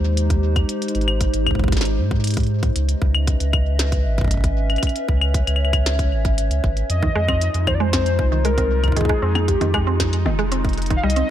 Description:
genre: IDM.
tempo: 116 BPM.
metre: 4/4.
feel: straight.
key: unclear.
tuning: A4 = 442 Hz.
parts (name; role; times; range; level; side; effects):
warbly tape-like pad; sustained chords; 0.0-11.3 s; Ab3 to Fb5; -26 LUFS; equal; chorus, built-in reverb.
warm sub bass; bass; 0.0-11.2 s; F1 to Ab2; -20 LUFS; equal; none.
glitchy drum kit; drums; 0.2-11.3 s; claves, hi-hat, percussion blips, snare drum; -26 LUFS; left 3 dB; digital delay.
electronic kick drum; drums; 0.3-11.0 s; none; -21 LUFS; equal; none.
warbly nostalgic lead; melody; 6.9-11.3 s; G4 to F5; -24 LUFS; left 1 dB; chorus, tremolo, digital delay.
bubbling stepped-filter texture; texture; 6.9-11.3 s; Eb4; -34 LUFS; left 2 dB; chorus, built-in reverb.
mallet-like synth pluck; arpeggios; 7.0-11.3 s; Eb3 to C4; -25 LUFS; right 3 dB; chorus, phaser, digital delay.
room: digital ambience.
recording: none.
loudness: -17 LUFS.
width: side -11 dB against mid.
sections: 0.0-11.3 A section.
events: none.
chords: 0.0 Abmaj7; 2.8 Dbm9; 6.9 Fm7.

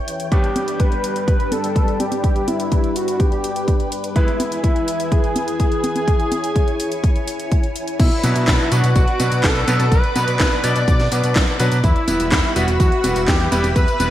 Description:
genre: italo disco.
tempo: 125 BPM.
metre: 4/4.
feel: straight.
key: unclear.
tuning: A4 = 440 Hz.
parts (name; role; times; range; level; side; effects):
string machine, full ensemble; sustained chords; 0.0-14.1 s; E3 to E6; -25 LUFS; left 1 dB; ensemble chorus.
clear electric grand piano; stabs; 0.0-14.1 s; G2 to B4; -25 LUFS; equal; lush chorus.
house drum kit; drums; 0.1-14.1 s; congas, crash cymbal, handclaps, hi-hat, snare drum, tambourine; -24 LUFS; equal; small room ambience, gated reverb.
wide unison lead; melody; 0.3-14.1 s; E4 to D5; -22 LUFS; equal; cassette tape.
electronic kick drum; drums; 0.3-13.9 s; none; -17 LUFS; equal; small room ambience.
chorused synth bass; bass; 8.0-14.1 s; E1 to B2; -20 LUFS; equal; none.
room: moderate lush hall reverb, RT60 1.7 s, digital ambience.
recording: bright 1980s-style digital production, vinyl crackle.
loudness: -15 LUFS.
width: side -12 dB against mid.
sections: 0.0-8.0 A section; 8.0-14.1 B section.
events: filter sweep on string machine 0.0-8.0.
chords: 0.3 G; 4.2 E; 8.0 Bm; 11.8 Em.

